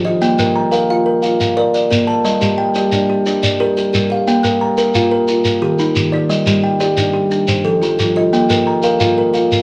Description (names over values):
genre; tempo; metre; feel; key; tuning
southern african traditional, mbira-style interlocking cycle; 118 BPM (dotted quarters); 12/8; straight; Bb major; A4 = 443 Hz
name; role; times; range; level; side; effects
kalimba; arpeggios; 0.0-9.6 s; Eb3 to Bb5; -17 LUFS; equal; none
kalimba; arpeggios; 0.0-9.6 s; Eb3 to F5; -21 LUFS; equal; none
shekere; percussion; 0.2-9.6 s; none; -23 LUFS; equal; none
room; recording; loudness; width
moderate large studio reverb, RT60 0.9 s; none; -15 LUFS; mono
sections
0.0-9.6 A section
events
none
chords
0.2 Bb; 2.2 Gm; 4.3 Bb5; 5.3 Eb; 6.3 G5; 7.3 F; 8.3 Bb5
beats
| 0.22 0.72 1.23 1.74 | 2.25 2.75 3.26 3.77 | 4.27 4.78 5.29 5.79 | 6.30 6.81 7.32 7.82 | 8.33 8.84 9.34